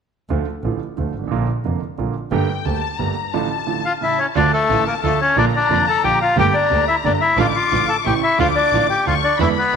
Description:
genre	tango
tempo	178 BPM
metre	3/4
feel	rubato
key	D harmonic minor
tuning	A4 = 440 Hz
part	warm concert grand piano	accompaniment	0.3-9.8 s	F1 to G4	-23 LUFS	right 10 dB	none
part	warm double bass	bass	0.3-9.8 s	F1 to E2	-23 LUFS	right 1 dB	none
part	warm studio violin section	second line	2.3-9.8 s	G5 to D6	-24 LUFS	left 10 dB	slapback echo
part	bandoneon	melody	3.9-9.8 s	A3 to A5	-16 LUFS	left 3 dB	none
part	bright symphonic string section	stabs	4.4-9.8 s	G#3 to G4	-27 LUFS	right 9 dB	none
room	moderate echo chamber reverb, RT60 1.9 s, studio ambience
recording	1960s-style stereo with parts hard left and right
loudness	-16 LUFS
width	side -6 dB against mid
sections	0.3-4.3 A section; 4.3-9.8 B section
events	none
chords	0.3 Dm; 1.3 Bb; 2.3 Gmadd9; 3.3 Dm/A; 4.0 A; 4.3 Dm; 5.4 Bb; 6.4 Gmadd9; 7.4 Dm/A; 8.1 A; 8.4 Dm

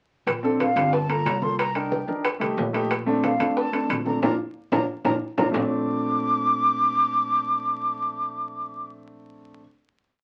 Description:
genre	Afro-Cuban jazz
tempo	182 BPM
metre	4/4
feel	straight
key	Bb major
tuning	A4 = 441 Hz
part	upright bass	bass	0.3-9.6 s	G1 to F2	-36 LUFS	equal	none
part	bongos	percussion	0.3-5.6 s	none	-33 LUFS	equal	none
part	claves	percussion	0.3-5.6 s	none	-48 LUFS	equal	none
part	congas	percussion	0.3-5.6 s	none	-37 LUFS	equal	none
part	timbales	percussion	0.3-5.6 s	none	-31 LUFS	equal	none
part	warm grand piano	accompaniment	0.4-9.6 s	A3 to Bb4	-29 LUFS	equal	none
part	breathy concert flute	melody	0.6-8.9 s	F5 to D6	-26 LUFS	equal	none
room	moderate small room reverb, RT60 0.5 s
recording	very old 78 rpm record, vinyl crackle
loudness	-24 LUFS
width	mono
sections	0.3-5.5 A section; 5.5-8.1 final chord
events	band accent 4.2-5.5; drum fill 4.6-5.5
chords	0.3 Bbmaj7; 0.9 Gm9; 1.6 Cm7; 2.2 F7; 2.9 Bbmaj7

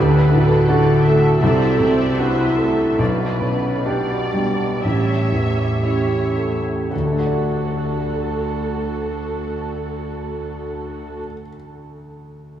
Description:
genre	classical, romantic movement for piano and orchestra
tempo	53-86 BPM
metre	4/4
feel	rubato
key	D major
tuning	A4 = 440 Hz
part	clear grand piano	melody	0.0-12.6 s	A1 to D5	-20 LUFS	equal	none
part	warm symphonic violin section	second line	0.0-11.2 s	A4 to E5	-28 LUFS	right 2 dB	none
part	rich symphonic viola section	accompaniment	0.0-11.2 s	F#4 to E5	-29 LUFS	equal	none
part	mellow French horn section	sustained chords	0.0-11.2 s	B3 to A4	-24 LUFS	right 2 dB	none
part	warm symphonic cello section	bass	0.0-11.2 s	D2 to D3	-26 LUFS	equal	none
room	wet cathedral reverb, RT60 5.3 s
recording	in a vast, echoing space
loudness	-17 LUFS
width	side -10 dB against mid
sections	0.0-6.9 A section; 6.9-11.0 B section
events	slowing down 0.0-6.9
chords	0.0 D; 1.4 D7/C; 3.0 G/B; 4.8 A7; 6.9 D

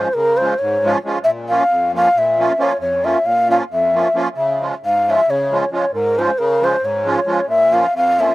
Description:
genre	balkan folk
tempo	270 BPM (eighths)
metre	7/8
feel	straight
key	unclear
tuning	A4 = 440 Hz
part	breathy mellow ney	melody	0.0-8.3 s	Bb4 to F5	-15 LUFS	equal	none
part	musette accordion	accompaniment	0.0-8.3 s	F2 to F4	-20 LUFS	right 1 dB	slapback echo
room	little or no reverb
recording	recorded outdoors, with no room sound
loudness	-14 LUFS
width	side -18 dB against mid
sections	0.0-8.3 A section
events	none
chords	0.0 Db; 1.2 Bbm; 4.4 Db; 7.5 Bbm

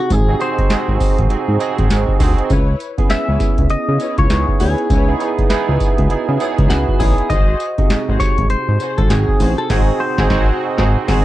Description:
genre	R&B, new jack swing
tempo	100 BPM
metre	4/4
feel	swing 60% on 16ths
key	C# minor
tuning	A4 = 440 Hz
part	clean electric guitar	melody	0.0-10.9 s	F#4 to E5	-22 LUFS	left 3 dB	analog chorus
part	barky tine electric piano	accompaniment	0.0-11.2 s	B#2 to G#4	-20 LUFS	right 6 dB	ensemble chorus
part	fat analog bass	bass	0.1-11.2 s	G#1 to C#3	-17 LUFS	equal	none
part	booming analog drum machine	drums	0.1-11.2 s	crash cymbal, handclaps, hi-hat, kick drum, snare drum, tambourine	-16 LUFS	equal	vintage 12-bit sampler grit
part	muted studio string section	stabs	2.5-11.2 s	E4 to C#5	-27 LUFS	left 5 dB	none
room	little or no reverb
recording	dry, close 1970s-style studio recording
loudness	-13 LUFS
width	side -15 dB against mid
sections	0.0-11.2 A section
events	band accent 9.7-11.2; kick muted 10.9-11.2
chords	0.0 G#7; 2.5 C#m7; 7.3 G#7

